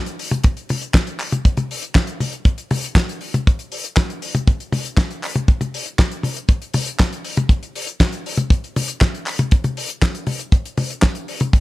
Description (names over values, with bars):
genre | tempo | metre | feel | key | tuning
italo disco | 119 BPM | 4/4 | straight | none | none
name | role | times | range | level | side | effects
damped 70s drum kit | drums | 0.1-11.6 s | handclaps, hi-hat, snare drum, toms | -21 LUFS | left 1 dB | none
kick drum | drums | 0.4-11.6 s | none | -14 LUFS | equal | none
room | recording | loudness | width
little or no reverb | none | -17 LUFS | side -18 dB against mid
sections
0.0-11.6 A section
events
none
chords
none